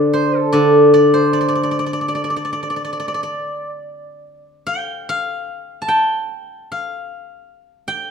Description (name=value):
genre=chinese traditional, Chinese solo plucked strings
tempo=71-78 BPM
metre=4/4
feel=rubato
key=D yu mode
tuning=A4 = 441 Hz
part: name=steel-string zither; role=solo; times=0.0-8.1 s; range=D3 to A5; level=-16 LUFS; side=equal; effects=none
room=light reverb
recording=minimal, uncompressed stereo recording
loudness=-15 LUFS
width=side -6 dB against mid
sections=0.0-8.1 A section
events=none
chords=none